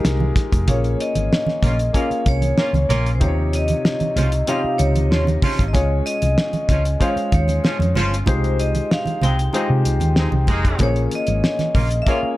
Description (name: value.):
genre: lush 1970s-style soul.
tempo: 95 BPM.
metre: 4/4.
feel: straight.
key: unclear.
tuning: A4 = 439 Hz.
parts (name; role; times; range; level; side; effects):
warm grand piano; accompaniment; 0.0-12.4 s; C3 to Eb5; -25 LUFS; left 2 dB; none.
hollow-body short-scale fingered electric bass; bass; 0.0-12.3 s; F1 to C3; -19 LUFS; equal; none.
cloth-damped thuddy drum kit; drums; 0.0-12.2 s; hi-hat, kick drum, snare drum; -20 LUFS; equal; none.
congas; percussion; 0.0-12.2 s; none; -27 LUFS; right 3 dB; none.
vibraphone with hard mallets; melody; 0.7-12.2 s; C5 to G5; -25 LUFS; equal; none.
warm horn section; stabs; 1.6-12.2 s; F3 to F4; -27 LUFS; right 1 dB; none.
room: light reverb.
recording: dark, warm production.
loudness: -16 LUFS.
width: side -17 dB against mid.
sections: 0.7-12.4 A section.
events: none.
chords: 0.0 Fm9; 0.7 Bbm7; 3.2 Eb13; 5.7 Dbmaj7; 8.3 Fm9/C; 10.8 Bbm7.